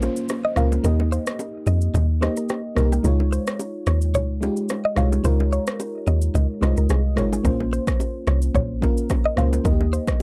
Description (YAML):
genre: afrobeats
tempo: 109 BPM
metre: 4/4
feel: swing 55% on 16ths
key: Eb mixolydian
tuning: A4 = 440 Hz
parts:
  - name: mellow FM electric piano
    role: accompaniment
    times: 0.0-10.2 s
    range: Ab3 to Eb5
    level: -28 LUFS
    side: equal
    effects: chorus
  - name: deep log drum bass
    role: bass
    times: 0.0-10.0 s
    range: Ab1 to F2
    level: -22 LUFS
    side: equal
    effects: none
  - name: deep house drum kit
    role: drums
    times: 0.0-10.2 s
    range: kick drum, rim click, shaker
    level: -28 LUFS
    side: equal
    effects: none
  - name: bongos and congas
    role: percussion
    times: 0.0-10.2 s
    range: none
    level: -33 LUFS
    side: equal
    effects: none
  - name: downlifter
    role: sound effects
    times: 0.0-3.0 s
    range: none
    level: -49 LUFS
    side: equal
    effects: none
  - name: direct-recorded clean electric guitar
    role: riff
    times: 0.4-10.0 s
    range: G4 to F5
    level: -30 LUFS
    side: equal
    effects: phaser, analog delay
room: little or no reverb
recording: dry, gritty hardware recording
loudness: -22 LUFS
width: mono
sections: 0.0-10.2 A section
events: break 0.0-7.4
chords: 0.0 Bbmadd9; 0.8 Eb; 3.0 Dbadd9; 7.4 Bbmadd9; 9.6 Eb